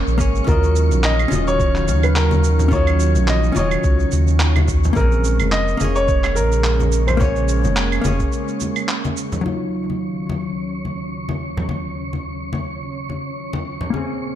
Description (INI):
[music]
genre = sunset chillout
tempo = 107 BPM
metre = 4/4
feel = swing 56% on 16ths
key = Eb minor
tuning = A4 = 438 Hz
[part]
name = hollow-body jazz guitar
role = accompaniment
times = 0.0-14.4 s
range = Gb3 to Eb5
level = -26 LUFS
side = moving between left 5 dB and right 3 dB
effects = auto-pan, low-pass filter, ping-pong delay
[part]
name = lush unison pad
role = sustained chords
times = 0.0-14.4 s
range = Eb2 to F5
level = -26 LUFS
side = right 2 dB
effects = chorus
[part]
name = warm sub bass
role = bass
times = 0.0-8.3 s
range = Eb1 to Eb2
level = -18 LUFS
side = equal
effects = none
[part]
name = wind-like tuned noise texture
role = texture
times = 0.0-14.4 s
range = Db4 to Db6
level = -32 LUFS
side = right 1 dB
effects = built-in reverb
[part]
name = electronic cabasa, handclaps and claves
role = drums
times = 0.1-9.4 s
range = none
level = -26 LUFS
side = right 2 dB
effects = studio reverb
[part]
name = electronic kick drum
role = drums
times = 0.2-8.3 s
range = none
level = -20 LUFS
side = equal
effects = studio reverb
[part]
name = dark baby grand piano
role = melody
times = 0.5-9.1 s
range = Bb4 to Eb5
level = -23 LUFS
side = equal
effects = ping-pong delay
[part]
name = congas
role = percussion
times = 0.5-14.1 s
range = none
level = -26 LUFS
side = left 2 dB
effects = none
[sound]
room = light reverb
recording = dark, warm production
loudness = -16 LUFS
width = side -11 dB against mid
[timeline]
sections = 0.0-9.4 A section; 9.4-14.4 B section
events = break 8.3-9.4; filter sweep on hollow-body jazz guitar 9.4-14.4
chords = 0.5 Ebm9; 5.0 Bbm9; 9.4 Ebm9